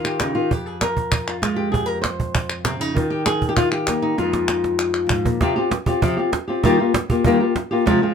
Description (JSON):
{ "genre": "flamenco", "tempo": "196 BPM", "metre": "4/4", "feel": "straight", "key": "F minor", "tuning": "A4 = 444 Hz", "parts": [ { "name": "flamenco guitar", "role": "melody", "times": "0.0-8.1 s", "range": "F2 to C5", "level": "-19 LUFS", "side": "left 1 dB", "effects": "none" }, { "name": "palmas hand claps", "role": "percussion", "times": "0.0-5.3 s", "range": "none", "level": "-25 LUFS", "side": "left 2 dB", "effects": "none" }, { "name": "cajon", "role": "percussion", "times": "0.2-8.0 s", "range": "none", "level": "-23 LUFS", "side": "right 2 dB", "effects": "none" } ], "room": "moderate small room reverb, RT60 0.5 s", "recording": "close, detailed microphones", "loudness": "-18 LUFS", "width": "side -7 dB against mid", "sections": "0.0-5.4 A section; 5.4-8.1 B section", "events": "drum fill 4.2-5.4", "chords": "0.0 Ebadd9; 0.5 Fmadd9; 3.0 Eb; 4.2 Fm7; 5.4 Csus4; 6.6 Ebadd9" }